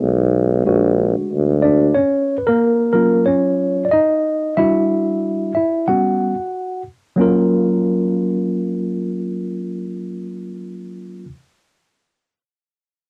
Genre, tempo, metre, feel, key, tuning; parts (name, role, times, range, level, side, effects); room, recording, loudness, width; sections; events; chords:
hip hop; 92 BPM; 4/4; swing 59% on 16ths; F# major; A4 = 440 Hz
mellow tine electric piano; accompaniment; 0.0-11.3 s; F#3 to F#5; -19 LUFS; equal
warm tuba; bass; 0.0-1.9 s; A#1 to D2; -18 LUFS; equal
light reverb; home recording on cassette; -18 LUFS; mono
0.0-7.2 A section; 7.2-9.8 B section
tine electric piano solo 0.0-7.2
0.0 Fm7b5 (rootless); 0.7 A#aug7; 2.0 D#m9; 4.6 Em7; 5.9 Gmaj7#11; 7.2 F#maj7